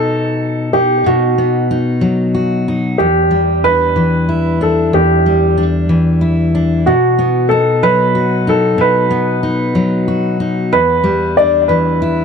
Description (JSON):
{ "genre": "pop", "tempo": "62 BPM (dotted quarters)", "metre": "6/8", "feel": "straight", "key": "E minor", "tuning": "A4 = 439 Hz", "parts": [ { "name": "warm baby grand piano", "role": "melody", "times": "0.0-12.2 s", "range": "F#4 to D5", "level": "-14 LUFS", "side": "right 1 dB", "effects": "ping-pong delay" }, { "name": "fingerpicked steel-string acoustic guitar", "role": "accompaniment", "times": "0.0-12.2 s", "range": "E2 to F#4", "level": "-14 LUFS", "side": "left 1 dB", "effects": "none" } ], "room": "light reverb", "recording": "dark, warm production", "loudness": "-11 LUFS", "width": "side -6 dB against mid", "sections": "0.0-12.2 A section", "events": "none", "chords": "0.0 B; 3.0 Em7; 6.9 B; 10.7 Em7", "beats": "0.09 | 1.06 2.03 | 3.00 3.96 | 4.93 5.90 | 6.87 7.83 | 8.80 9.76 | 10.73 11.69" }